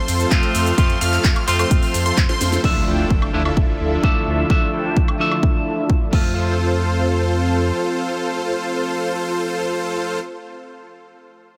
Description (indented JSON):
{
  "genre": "EDM, festival progressive house",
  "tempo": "129 BPM",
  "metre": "4/4",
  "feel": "straight",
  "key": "F major",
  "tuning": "A4 = 440 Hz",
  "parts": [
    { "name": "lush unison pad", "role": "sustained chords", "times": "0.0-10.2 s", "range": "D3 to E5", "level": "-31 LUFS", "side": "equal", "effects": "chorus, sidechain pumping" },
    { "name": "plucky unison lead", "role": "arpeggios", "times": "0.0-2.6 s", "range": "C6 to F6", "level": "-28 LUFS", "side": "equal", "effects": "sidechain pumping, dub echo" },
    { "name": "dense compressed supersaw", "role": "riff", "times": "0.0-10.2 s", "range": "D4 to G5", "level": "-26 LUFS", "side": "equal", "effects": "sidechain pumping, low-pass filter, dub echo" },
    { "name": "saturated sub bass", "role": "bass", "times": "0.1-7.7 s", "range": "D2 to F2", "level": "-24 LUFS", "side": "equal", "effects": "sidechain pumping" },
    { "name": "house drum kit", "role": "drums", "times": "0.1-6.2 s", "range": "crash cymbal, handclaps, hi-hat, ride cymbal, shaker, snare drum, woodblock", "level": "-28 LUFS", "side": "equal", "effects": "none" },
    { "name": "clean electric guitar", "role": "accompaniment", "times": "0.3-10.2 s", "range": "F3 to E5", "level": "-27 LUFS", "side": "equal", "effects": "sidechain pumping, dub echo" },
    { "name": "electronic kick drum", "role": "drums", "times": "0.3-6.2 s", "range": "none", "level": "-20 LUFS", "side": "equal", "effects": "none" },
    { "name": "impact", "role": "sound effects", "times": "2.6-4.5 s", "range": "none", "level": "-32 LUFS", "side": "equal", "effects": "none" }
  ],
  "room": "light reverb",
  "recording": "none",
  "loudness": "-19 LUFS",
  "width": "mono",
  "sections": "0.0-2.6 A section; 2.6-6.4 B section; 6.4-10.1 C section",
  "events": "drop 0.0-2.6; drum fill 2.3-2.6; impact 2.6-4.5; filter sweep on supersaw synth 2.6-6.4",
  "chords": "0.0 F; 2.6 Dmadd9; 6.1 F",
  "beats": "0.31 | 0.78 1.24 1.71 2.17 | 2.64 3.10 3.57 4.04 | 4.50 4.96 5.43 5.90 | 6.36 6.83 7.29 7.76 | 8.22 8.69 9.15 9.62"
}